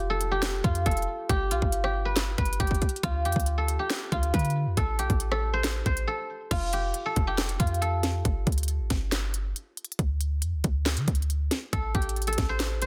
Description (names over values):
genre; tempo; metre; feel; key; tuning
hip hop, trap; 138 BPM; 4/4; half-time; unclear; A4 = 436 Hz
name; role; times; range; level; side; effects
guzheng; melody; 0.0-12.9 s; F4 to C5; -32 LUFS; equal; low-pass filter
clean 808-style bass; bass; 0.0-12.9 s; F1 to D3; -31 LUFS; equal; none
trap drum kit; drums; 0.2-12.9 s; crash cymbal, handclaps, hi-hat, kick drum, rim click, snare drum; -30 LUFS; equal; none
room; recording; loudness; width
light reverb; dense, heavily limited modern master; -27 LUFS; mono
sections
0.0-6.5 A section; 6.5-12.9 B section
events
break 6.1-6.5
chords
0.0 F; 1.3 G; 3.0 Dm; 4.8 Am9; 6.5 F; 8.3 G5; 10.0 N.C.; 11.7 Am7